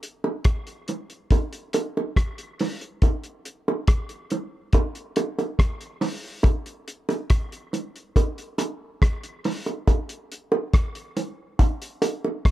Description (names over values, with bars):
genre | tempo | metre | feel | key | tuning
reggae | 70 BPM | 4/4 | straight | none | none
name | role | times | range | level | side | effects
cloth-damped thuddy drum kit | drums | 0.0-12.5 s | hi-hat, kick drum, rim click | -21 LUFS | equal | none
bongos | percussion | 0.2-12.4 s | none | -25 LUFS | right 3 dB | none
room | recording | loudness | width
little or no reverb | dark, warm production | -23 LUFS | side -15 dB against mid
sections
0.0-12.5 A section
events
none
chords
none